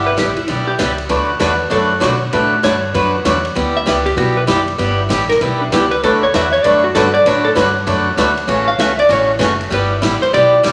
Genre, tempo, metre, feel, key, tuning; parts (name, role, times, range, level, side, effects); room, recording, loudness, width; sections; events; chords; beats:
country, western swing; 195 BPM; 4/4; swing 63% on 8ths; D major; A4 = 440 Hz
vintage hollow-body jazz guitar; melody; 0.0-10.6 s; D4 to F5; -18 LUFS; equal
picked swing-style acoustic guitar; accompaniment; 0.0-10.7 s; C#3 to B4; -18 LUFS; equal
upright bass; bass; 0.0-10.7 s; F#1 to B2; -25 LUFS; equal
swinging big-band drum kit; drums; 0.2-10.7 s; hi-hat, ride cymbal, snare drum; -26 LUFS; equal
wet large studio reverb, RT60 1.2 s; -15 LUFS; mono
0.0-10.7 A section
hollow-body jazz guitar solo 0.0-10.7
0.0 G6; 1.1 D6; 3.6 G6; 6.0 D6; 8.5 A6; 9.7 G6
0.18 0.49 0.80 | 1.10 1.41 1.72 2.02 | 2.33 2.64 2.95 3.25 | 3.56 3.87 4.18 4.49 | 4.79 5.10 5.41 5.72 | 6.03 6.33 6.64 6.95 | 7.26 7.57 7.87 8.18 | 8.49 8.80 9.11 9.41 | 9.72 10.03 10.34 10.65